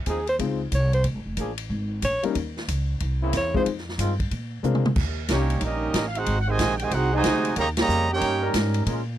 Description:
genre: jazz, big band swing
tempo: 184 BPM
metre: 4/4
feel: swing 64% on 8ths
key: Eb major from 5.0 s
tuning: A4 = 438 Hz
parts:
  - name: upright bass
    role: bass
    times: 0.0-9.2 s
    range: F1 to C3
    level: -26 LUFS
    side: equal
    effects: none
  - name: clear alto saxophone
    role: melody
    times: 0.1-3.6 s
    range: Ab4 to Db5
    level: -24 LUFS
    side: right 1 dB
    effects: none
  - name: bright trombone section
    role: sustained chords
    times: 0.1-9.0 s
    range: Db3 to Bb4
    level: -30 LUFS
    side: left 1 dB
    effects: stereo widening
  - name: swinging big-band drum kit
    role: drums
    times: 0.1-9.0 s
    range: crash cymbal, hi-hat, kick drum, ride cymbal, snare drum, toms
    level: -30 LUFS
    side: equal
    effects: none
  - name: clear baby grand piano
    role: accompaniment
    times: 0.4-4.8 s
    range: G3 to C5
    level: -26 LUFS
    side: left 8 dB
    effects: none
  - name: clear trumpet section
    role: melody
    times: 5.3-8.5 s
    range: Bb3 to Bb5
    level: -25 LUFS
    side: right 2 dB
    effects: none
  - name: clear trombone section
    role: second line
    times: 5.3-8.5 s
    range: C3 to G4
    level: -27 LUFS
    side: right 4 dB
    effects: none
room: light reverb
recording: dry, close 1970s-style studio recording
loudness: -22 LUFS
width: side -12 dB against mid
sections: 0.0-5.0 A section; 5.0-9.2 B section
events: alto saxophone solo 0.0-5.0; drum fill 4.6-5.0; band accent 7.7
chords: 0.0 Fm7; 1.0 Bb7(no3); 2.4 Dbsus2; 3.0 C7b9; 3.7 Fm7; 4.3 Bb9; 5.0 Eb7; 6.3 Ab7; 7.6 Eb7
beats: 0.07 0.40 0.72 | 1.05 1.38 1.70 2.03 | 2.35 2.68 3.01 3.33 | 3.66 3.99 4.31 4.64 | 4.96 5.29 5.62 5.94 | 6.27 6.59 6.92 7.24 | 7.57 7.89 8.22 8.54 | 8.87

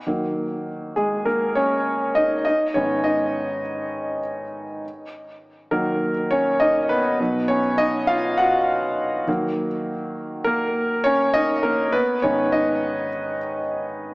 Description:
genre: pop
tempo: 101 BPM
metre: 4/4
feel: straight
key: Eb minor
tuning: A4 = 440 Hz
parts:
  - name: warm concert grand piano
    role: solo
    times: 0.1-14.1 s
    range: Ab2 to F#5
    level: -20 LUFS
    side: equal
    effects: diffuse ambient delay
room: wet plate reverb, RT60 3.1 s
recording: dreamy mix soaked in reverb, small speaker sound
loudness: -19 LUFS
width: side -24 dB against mid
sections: 0.0-4.8 A section; 4.8-14.1 B section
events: grand piano solo 0.0-4.8, 4.8-14.1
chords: 0.0 Ebm; 2.5 Abm; 4.8 Ebm; 7.2 B; 9.3 Ebm; 11.9 Abm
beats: | 0.07 0.67 1.26 1.86 | 2.45 3.05 3.64 4.24 | 4.83 5.42 6.02 6.61 | 7.20 7.79 8.39 8.98 | 9.57 10.16 10.76 11.35 | 11.94 12.54 13.13 13.72

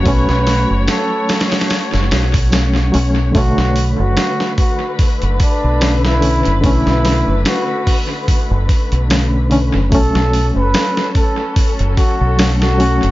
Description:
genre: trip hop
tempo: 73 BPM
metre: 4/4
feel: swing 55% on 16ths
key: B minor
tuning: A4 = 440 Hz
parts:
  - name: bright reed electric piano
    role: accompaniment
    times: 0.0-13.1 s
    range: D3 to C#5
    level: -20 LUFS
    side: equal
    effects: overdrive, medium tremolo, vintage 12-bit sampler grit, analog delay
  - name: dark chamber string section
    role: sustained chords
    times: 0.0-13.1 s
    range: D3 to C#5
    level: -23 LUFS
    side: left 2 dB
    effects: none
  - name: deep dub fingered electric bass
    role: bass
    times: 0.0-13.1 s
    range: F#1 to B1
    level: -15 LUFS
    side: equal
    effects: none
  - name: trumpet with bucket mute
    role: melody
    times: 0.1-13.1 s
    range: D4 to B4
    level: -20 LUFS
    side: equal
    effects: analog delay
  - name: dusty soul sampler-style drum kit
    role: drums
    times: 0.1-13.1 s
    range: hi-hat, kick drum, snare drum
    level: -17 LUFS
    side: equal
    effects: analog delay
  - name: tambourine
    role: percussion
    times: 0.9-2.7 s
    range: none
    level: -34 LUFS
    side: right 7 dB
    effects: none
room: studio ambience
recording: echo-heavy mix, nothing above 7.5 kHz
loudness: -12 LUFS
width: side -17 dB against mid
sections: 0.0-3.3 A section; 3.3-13.1 B section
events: none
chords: 0.0 F#m; 3.3 Bm7; 9.9 F#m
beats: | 0.06 0.88 1.70 2.52 | 3.35 4.17 4.99 5.81 | 6.63 7.46 8.28 9.10 | 9.92 10.74 11.57 12.39

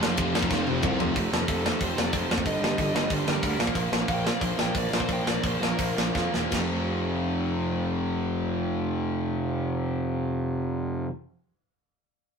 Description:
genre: punk rock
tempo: 157-186 BPM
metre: 4/4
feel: straight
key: unclear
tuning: A4 = 440 Hz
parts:
  - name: bluesy overdriven lead guitar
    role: melody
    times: 0.0-6.0 s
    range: A4 to G5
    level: -34 LUFS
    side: left 2 dB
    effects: distortion
  - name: biting overdriven guitar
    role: riff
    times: 0.0-11.1 s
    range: F2 to Bb3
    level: -31 LUFS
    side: right 5 dB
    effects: none
  - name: overdriven electric guitar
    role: riff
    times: 0.0-11.1 s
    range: F2 to Bb3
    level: -33 LUFS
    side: left 4 dB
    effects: none
  - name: sludgy distorted guitar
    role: riff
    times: 0.0-1.2 s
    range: F2 to F3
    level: -31 LUFS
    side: left 2 dB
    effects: overdrive
  - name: fuzz picked electric bass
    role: bass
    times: 0.0-11.0 s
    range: E1 to F2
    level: -29 LUFS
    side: left 1 dB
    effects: overdrive
  - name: tight metal drum kit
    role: drums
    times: 0.0-6.6 s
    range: crash cymbal, hi-hat, kick drum, ride cymbal, snare drum, toms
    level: -27 LUFS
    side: equal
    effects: none
room: moderate studio reverb, RT60 0.6 s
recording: rough rehearsal-room recording, warm saturation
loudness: -24 LUFS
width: side -6 dB against mid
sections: 0.0-1.2 A section; 1.2-6.5 B section; 6.5-9.6 C section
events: drum fill 0.5-1.2, 6.1-6.5; slowing down 3.8-6.5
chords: 0.0 F5; 2.5 G5; 3.6 Bb5; 6.5 F5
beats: 0.19 0.51 0.83 | 1.16 1.48 1.80 2.13 | 2.45 2.78 3.10 3.43 | 3.75 4.08 4.41 4.74 | 5.08 5.42 5.78 6.14 | 6.52 6.90 7.29 7.67 | 8.05 8.44 8.82 9.20

